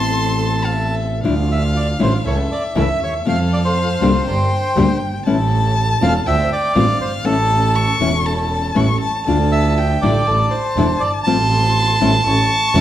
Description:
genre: tango.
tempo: 120 BPM.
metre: 4/4.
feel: rubato.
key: D minor.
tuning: A4 = 440 Hz.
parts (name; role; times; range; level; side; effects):
bandoneon; melody; 0.0-12.8 s; A4 to A5; -20 LUFS; right 1 dB; none.
warm violin; second line; 0.0-12.8 s; E5 to C#6; -23 LUFS; left 3 dB; none.
nylon-string guitar; accompaniment; 0.0-12.8 s; C3 to G4; -21 LUFS; left 4 dB; none.
dark symphonic string section; stabs; 0.0-12.8 s; C4 to C5; -26 LUFS; right 1 dB; none.
warm double bass; bass; 0.0-12.8 s; E1 to F2; -19 LUFS; right 2 dB; none.
room: moderate large studio reverb, RT60 1.5 s.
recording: none.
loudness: -14 LUFS.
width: side -12 dB against mid.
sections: 0.0-1.2 A section; 1.2-12.8 B section.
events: none.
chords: 0.0 Amadd9; 1.2 Dmadd9; 2.3 A/C#; 3.3 F; 4.3 Gm; 5.3 A; 6.3 Dm7; 7.2 A; 9.3 Dm; 10.3 Asus4; 11.3 F/A; 12.3 A.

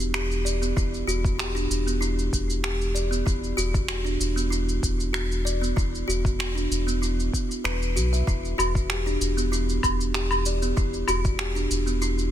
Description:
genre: organic downtempo.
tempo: 96 BPM.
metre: 4/4.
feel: straight.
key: E minor.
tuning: A4 = 441 Hz.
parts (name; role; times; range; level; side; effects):
buzzing kalimba; arpeggios; 0.0-12.3 s; B3 to E5; -28 LUFS; right 1 dB; tape echo.
round analog bass; bass; 0.0-12.3 s; E1 to B1; -27 LUFS; equal; sidechain pumping.
electronic shaker, finger snaps and woodblock; drums; 0.0-12.3 s; none; -29 LUFS; right 1 dB; soft clipping on snare.
electronic kick drum; drums; 0.8-11.4 s; none; -26 LUFS; equal; overdrive.
room: light reverb.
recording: dense, heavily limited modern master.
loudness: -23 LUFS.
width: side -11 dB against mid.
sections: 0.0-12.3 A section.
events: none.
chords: 0.0 Em7; 3.3 D/E; 8.3 Em7.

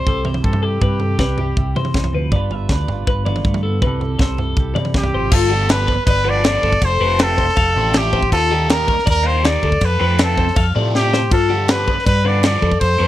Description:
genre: math rock and midwest emo.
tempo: 160 BPM.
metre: 4/4.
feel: straight.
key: unclear.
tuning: A4 = 441 Hz.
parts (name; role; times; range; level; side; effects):
clear trumpet; melody; 0.0-1.8, 5.0-13.1 s; G4 to D5; -19 LUFS; equal; slapback echo.
clean electric guitar; accompaniment; 0.0-6.8 s; C3 to C5; -27 LUFS; right 7 dB; none.
twelve-string electric guitar; arpeggios; 0.0-13.1 s; F4 to F5; -24 LUFS; left 6 dB; none.
hollow-body short-scale fingered electric bass; bass; 0.0-13.1 s; F1 to C3; -20 LUFS; equal; none.
crisp fusion drum kit; drums; 0.1-12.9 s; crash cymbal, kick drum, snare drum, toms; -19 LUFS; equal; none.
crunchy overdriven guitar; riff; 5.5-13.1 s; C3 to Eb4; -24 LUFS; right 1 dB; phaser.
room: small room ambience.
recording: dry, close 1970s-style studio recording.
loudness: -14 LUFS.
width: side -14 dB against mid.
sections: 0.0-5.3 A section; 5.3-13.1 B section.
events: drum fill 10.9-11.3.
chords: 0.0 Cmaj7; 2.3 G7; 3.8 C6; 5.3 G7; 6.8 F; 8.3 Ebmaj7; 9.8 F; 11.3 G7.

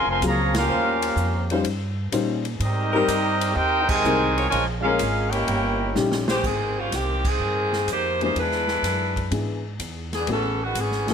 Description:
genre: jazz, big band swing.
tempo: 125 BPM.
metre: 4/4.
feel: swing 69% on 8ths.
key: Ab major.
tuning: A4 = 440 Hz.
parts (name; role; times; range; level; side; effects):
clear trumpet section; melody; 0.0-5.9 s; C4 to C6; -23 LUFS; equal; none.
bright trombone section; second line; 0.0-5.9 s; C3 to G4; -27 LUFS; right 3 dB; none.
upright bass; bass; 0.0-11.1 s; F1 to Bb2; -27 LUFS; right 1 dB; none.
dark baby grand piano; accompaniment; 0.2-11.1 s; Fb3 to C5; -25 LUFS; left 5 dB; none.
swinging big-band drum kit; drums; 0.2-11.1 s; crash cymbal, hi-hat, kick drum, ride cymbal, snare drum; -31 LUFS; equal; none.
mellow saxophone section; sustained chords; 0.7-6.9 s; Fb3 to Eb5; -31 LUFS; equal; none.
bright saxophone section; melody; 6.3-11.1 s; Eb3 to C5; -24 LUFS; equal; none.
room: light reverb.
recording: none.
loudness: -20 LUFS.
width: side -7 dB against mid.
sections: 0.0-6.4 A section; 6.4-11.1 B section.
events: band accent 0.5, 3.8, 7.2; drum fill 6.0-6.4.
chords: 0.0 Gbmaj9#11; 0.7 Eb13; 2.6 Abmaj9; 4.5 Bbm7; 5.5 Eb7b9; 6.4 Abmaj9; 8.4 E7; 10.3 Amaj9.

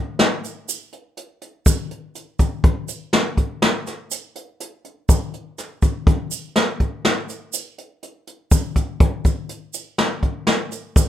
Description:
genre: progressive instrumental, progressive.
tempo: 123 BPM.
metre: 7/4.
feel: straight.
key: none.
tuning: none.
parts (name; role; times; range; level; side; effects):
jazz brush drum kit; drums; 0.2-11.1 s; hi-hat, kick drum, snare drum; -18 LUFS; equal; none.
tube shaker; percussion; 0.4-11.1 s; none; -28 LUFS; right 8 dB; none.
room: little or no reverb.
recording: none.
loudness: -19 LUFS.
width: side -12 dB against mid.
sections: 0.0-11.1 A section.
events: none.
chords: none.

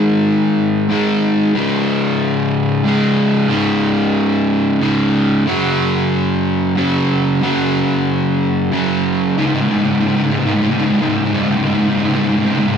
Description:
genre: rock.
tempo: 92 BPM.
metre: 3/4.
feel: straight.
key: unclear.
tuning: A4 = 440 Hz.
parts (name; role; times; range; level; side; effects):
crunchy overdriven guitar; solo; 0.0-12.8 s; C#2 to G#3; -13 LUFS; equal; none.
room: wet large studio reverb, RT60 0.9 s.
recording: band playing live in one room.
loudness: -13 LUFS.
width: side -7 dB against mid.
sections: 0.0-9.4 A section; 9.4-12.8 B section.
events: build-up 9.4-12.8.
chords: 0.0 G#5; 1.5 C#5; 5.5 F#5; 9.4 C#5.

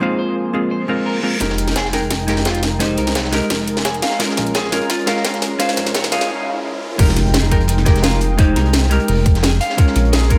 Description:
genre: liquid drum and bass.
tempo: 172 BPM.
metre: 4/4.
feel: swing 53% on 16ths.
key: F minor.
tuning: A4 = 440 Hz.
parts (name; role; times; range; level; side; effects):
hollow-body jazz guitar; accompaniment; 0.0-10.4 s; Ab3 to G5; -24 LUFS; equal; dub echo.
warm analog pad; sustained chords; 0.0-10.4 s; F3 to C6; -27 LUFS; equal; subtle chorus.
clean electric guitar; arpeggios; 0.0-10.3 s; Eb4 to F5; -28 LUFS; equal; lush chorus, low-pass filter, dub echo.
reverse cymbal, riser, noise sweep and impact; sound effects; 0.9-8.4 s; none; -32 LUFS; equal; none.
dark detuned saw bass; bass; 1.4-10.4 s; F1 to C2; -21 LUFS; equal; none.
crunchy breakbeat drum kit; drums; 1.4-10.4 s; hi-hat, snare drum; -28 LUFS; equal; high-pass filter on hats, high-pass filter on snare, high-pass filter on room.
drum and bass drum kit; drums; 1.4-10.4 s; crash cymbal, hi-hat, snare drum; -24 LUFS; equal; overdrive, high-pass filter on snare, high-pass filter on hats, high-pass filter on cymbals.
electronic kick drum; drums; 1.4-10.4 s; none; -17 LUFS; equal; overdrive, high-pass filter on kick.
room: light reverb.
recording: high-pass filter.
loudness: -17 LUFS.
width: mono.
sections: 0.0-1.4 A section; 1.4-7.0 B section; 7.0-10.4 C section.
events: reverse cymbal 0.9-1.4; build-up 1.4-7.0; drum fill 1.4-6.3; noise sweep 5.6-7.0; break 6.3-7.0; drop 7.0-10.4; impact 7.0-8.4.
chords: 0.0 Ab69; 1.4 Fm11; 4.0 Bbm7; 7.0 Fm11; 9.6 Bbm7.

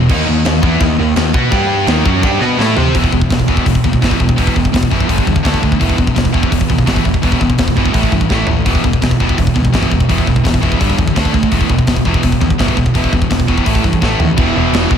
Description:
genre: heavy metal.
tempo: 168 BPM.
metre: 4/4.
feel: straight.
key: E harmonic minor.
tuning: A4 = 440 Hz.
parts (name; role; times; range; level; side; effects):
overdriven electric guitar; riff; 0.0-2.9, 14.4-15.0 s; E2 to C5; -19 LUFS; left 1 dB; slapback echo.
scooped high-gain guitar; riff; 0.0-15.0 s; E2 to C5; -17 LUFS; left 8 dB; distortion.
sludgy distorted guitar; riff; 0.0-15.0 s; E2 to C5; -17 LUFS; right 9 dB; overdrive.
fuzz picked electric bass; bass; 0.0-15.0 s; E1 to C3; -18 LUFS; equal; overdrive.
tight metal drum kit; drums; 0.1-15.0 s; china cymbal, crash cymbal, hi-hat, kick drum, snare drum, toms; -16 LUFS; equal; none.
room: light reverb, small room ambience.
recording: none.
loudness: -11 LUFS.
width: side -8 dB against mid.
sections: 0.0-2.9 A section; 2.9-14.4 B section.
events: drum fill 2.6-2.9, 8.3-8.7, 14.0-14.4.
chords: 0.1 D#5; 1.5 G5; 1.9 D#5; 2.9 E5; 5.1 G5; 5.4 D5; 5.8 E5; 7.9 A5; 8.7 E5; 10.8 G5; 11.2 D5; 11.5 E5; 13.7 A5; 14.4 E5.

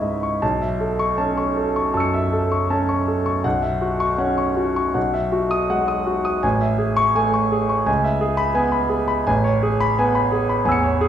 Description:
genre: classical, impressionist solo piano.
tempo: 66-89 BPM.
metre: 4/4.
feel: rubato.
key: unclear.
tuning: A4 = 439 Hz.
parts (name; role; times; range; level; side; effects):
clear concert grand piano; solo; 0.0-11.1 s; A1 to C#7; -18 LUFS; equal; none.
room: wet recital hall reverb, RT60 1.4 s.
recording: heard from further back in the room.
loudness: -18 LUFS.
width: side -10 dB against mid.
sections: 0.4-11.1 A section.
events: none.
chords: 0.4 B9sus4; 3.4 C#m7/B; 5.0 Emaj9/B; 6.4 Amaj7; 7.9 C#m7; 9.3 Amaj9.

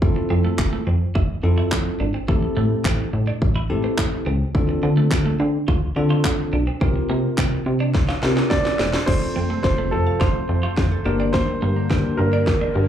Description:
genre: dance-pop.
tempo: 106 BPM.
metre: 4/4.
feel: straight.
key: F major.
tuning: A4 = 440 Hz.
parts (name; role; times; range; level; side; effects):
bell-like tine electric piano; accompaniment; 0.0-12.7 s; Bb3 to C5; -26 LUFS; left 2 dB; sidechain pumping, plate reverb, slapback echo.
plucky analog bass; bass; 0.0-12.9 s; E1 to D3; -21 LUFS; equal; sidechain pumping.
house drum kit; drums; 0.0-12.6 s; crash cymbal, handclaps, kick drum, snare drum; -21 LUFS; equal; none.
twelve-string electric guitar; riff; 0.2-12.8 s; A3 to F4; -30 LUFS; right 4 dB; lush chorus, slapback echo.
warm grand piano; melody; 8.5-12.9 s; A4 to D5; -25 LUFS; right 2 dB; ping-pong delay, plate reverb, slapback echo.
sweeping resonant pad; sustained chords; 9.1-12.9 s; C3 to Bb3; -30 LUFS; left 1 dB; chorus, sidechain pumping, plate reverb.
glassy wavetable pluck; arpeggios; 9.1-12.8 s; D3 to F5; -33 LUFS; equal; none.
room: light reverb.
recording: live gig heard through the venue's PA, club reverb.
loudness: -18 LUFS.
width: side -10 dB against mid.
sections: 0.0-9.1 A section; 9.1-12.9 B section.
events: drum fill 7.9-9.1, 9.1-12.9; build-up 9.1-12.9.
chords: 0.0 Fmaj7; 2.3 Am7; 4.5 Dm7; 6.8 C7sus4; 9.1 F; 11.1 Gm.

